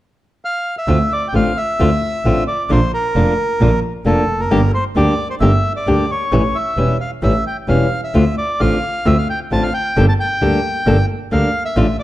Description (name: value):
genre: tango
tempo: 132 BPM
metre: 4/4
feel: rubato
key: D minor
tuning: A4 = 440 Hz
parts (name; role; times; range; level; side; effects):
- bandoneon; melody; 0.4-12.0 s; A4 to A5; -20 LUFS; equal; slapback echo
- flamenco guitar; accompaniment; 0.9-11.9 s; D3 to A4; -19 LUFS; left 2 dB; none
- bright double bass; bass; 0.9-12.0 s; E1 to D2; -17 LUFS; right 1 dB; none
room: light reverb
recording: dark, warm production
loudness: -14 LUFS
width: side -15 dB against mid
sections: 0.9-12.0 A section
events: none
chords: 0.0 N.C.; 0.9 Dm7; 2.7 Bb; 4.5 Gm; 6.3 A7; 8.1 Dm7; 10.0 Gmadd9